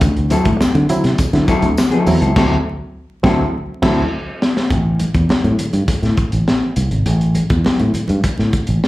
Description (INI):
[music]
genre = funk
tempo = 102 BPM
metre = 4/4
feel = straight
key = unclear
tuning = A4 = 440 Hz
[part]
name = barky reed electric piano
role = stabs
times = 0.0-4.0 s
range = D3 to E4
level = -20 LUFS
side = right 1 dB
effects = overdrive, slapback echo
[part]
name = fingered electric bass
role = bass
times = 0.0-8.8 s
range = G#1 to D3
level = -16 LUFS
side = equal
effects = none
[part]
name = crunchy breakbeat drum kit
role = drums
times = 0.0-8.9 s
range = crash cymbal, hi-hat, kick drum, snare drum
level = -18 LUFS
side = equal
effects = none
[part]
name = congas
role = percussion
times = 0.0-8.5 s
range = none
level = -25 LUFS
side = right 2 dB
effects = slapback echo
[part]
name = tambourine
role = percussion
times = 0.0-2.2 s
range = none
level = -35 LUFS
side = left 5 dB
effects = none
[part]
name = hollow-body jazz guitar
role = accompaniment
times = 0.3-4.0 s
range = F#3 to A4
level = -18 LUFS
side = left 2 dB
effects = slapback echo
[sound]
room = light reverb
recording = live gig heard through the venue's PA, club reverb, vinyl crackle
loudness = -13 LUFS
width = side -17 dB against mid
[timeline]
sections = 0.0-4.7 A section; 4.7-8.9 B section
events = band accent 2.4-4.7; drum fill 4.1-4.7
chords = 0.0 D9; 4.7 N.C.